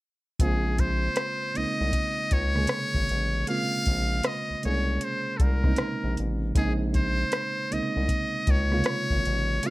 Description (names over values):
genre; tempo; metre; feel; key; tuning
R&B, neo-soul; 78 BPM; 4/4; swing 60% on 16ths; Bb minor; A4 = 443 Hz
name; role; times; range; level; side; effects
trumpet with metal mute; melody; 0.4-9.7 s; Ab4 to F5; -29 LUFS; equal; none
reed electric piano; accompaniment; 0.4-9.7 s; C3 to Ab4; -30 LUFS; right 2 dB; none
round analog bass; bass; 0.4-9.6 s; Ab1 to Db2; -27 LUFS; equal; none
soft vintage rhythm box; drums; 0.4-9.7 s; hi-hat, kick drum, rim click; -26 LUFS; equal; overdrive
room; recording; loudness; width
little or no reverb; none; -24 LUFS; side -19 dB against mid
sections
0.4-9.7 A section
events
none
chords
0.4 Bbm9